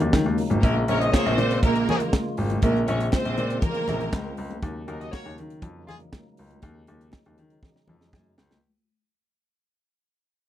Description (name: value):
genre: disco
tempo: 120 BPM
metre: 4/4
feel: straight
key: unclear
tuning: A4 = 440 Hz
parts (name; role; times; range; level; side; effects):
- tonewheel organ; sustained chords; 0.0-8.6 s; Db3 to F4; -32 LUFS; right 2 dB; fast rotary speaker
- warm baby grand piano; bass; 0.0-8.6 s; Ab1 to Eb3; -26 LUFS; left 1 dB; none
- tight funk drum kit; drums; 0.0-8.6 s; handclaps, hi-hat, kick drum, snare drum; -22 LUFS; right 1 dB; none
- congas; percussion; 0.1-8.6 s; none; -31 LUFS; left 4 dB; none
- clear studio string section; second line; 0.6-4.3 s; Bb3 to Db5; -27 LUFS; right 3 dB; none
- mellow horn section; stabs; 0.9-6.0 s; F3 to Eb5; -28 LUFS; left 2 dB; none
room: little or no reverb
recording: dry, close 1970s-style studio recording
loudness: -21 LUFS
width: side -12 dB against mid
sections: 0.0-8.6 A section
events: fade-out 0.0-8.6; drum fill 7.6-8.6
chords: 0.0 Ebm7; 0.6 Bbm7; 4.6 Ebm7